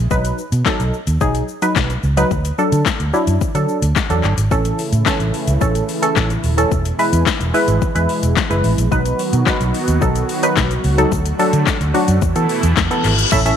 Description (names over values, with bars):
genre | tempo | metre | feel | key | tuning
dance-pop | 109 BPM | 4/4 | straight | unclear | A4 = 442 Hz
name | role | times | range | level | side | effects
vintage muted fingered electric bass | bass | 0.0-13.5 s | D#1 to E3 | -17 LUFS | right 1 dB | sidechain pumping
wavetable chord stab | accompaniment | 0.1-13.6 s | E3 to E5 | -19 LUFS | equal | sidechain pumping
deep house drum kit | drums | 0.1-13.6 s | crash cymbal, handclaps, hi-hat, kick drum, shaker, snare drum | -20 LUFS | left 4 dB | overdrive
filtered supersaw swell | sustained chords | 4.5-13.3 s | B2 to F#4 | -24 LUFS | right 1 dB | sidechain pumping
reverse cymbal and impact | sound effects | 12.7-13.6 s | none | -21 LUFS | left 4 dB | none
room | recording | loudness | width
light reverb, digital ambience | 1960s-style stereo | -14 LUFS | side -8 dB against mid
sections
0.0-13.3 A section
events
reverse cymbal 12.7-13.3; impact 13.3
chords
0.1 B; 2.3 D; 4.5 A; 6.7 E; 8.9 B; 11.1 D; 12.2 Esus4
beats
| 0.11 0.66 1.21 1.76 | 2.31 2.86 3.41 3.96 | 4.51 5.06 5.61 6.16 | 6.71 7.26 7.82 8.37 | 8.92 9.47 10.02 10.57 | 11.12 11.67 12.22 12.77 | 13.32